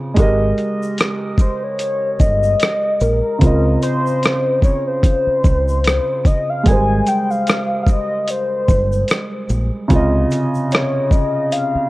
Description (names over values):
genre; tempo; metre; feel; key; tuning
lo-fi hip hop; 74 BPM; 4/4; swing 57% on 16ths; Ab major; A4 = 436 Hz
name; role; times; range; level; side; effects
dark upright piano; accompaniment; 0.0-11.9 s; C3 to Eb5; -20 LUFS; right 2 dB; cassette tape
deep dub fingered electric bass; bass; 0.2-11.8 s; G1 to Db2; -18 LUFS; equal; none
dusty soul sampler-style drum kit; drums; 0.2-11.7 s; hi-hat, kick drum, rim click, shaker; -16 LUFS; equal; overdrive
egg shaker; percussion; 0.2-11.7 s; none; -44 LUFS; left 4 dB; none
warm velvety synth lead; melody; 1.4-11.9 s; Bb4 to Ab5; -19 LUFS; left 2 dB; chorus
room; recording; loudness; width
light reverb; worn, warbling old tape, cassette tape, warbly pitch drift; -14 LUFS; side -19 dB against mid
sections
0.0-11.9 A section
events
none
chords
0.2 Absus2; 3.4 Dbmaj9; 6.7 Abmaj9; 9.9 Dbmaj9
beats
| 0.17 0.98 1.79 2.60 | 3.42 4.22 5.04 5.85 | 6.66 7.47 8.28 9.09 | 9.90 10.71 11.52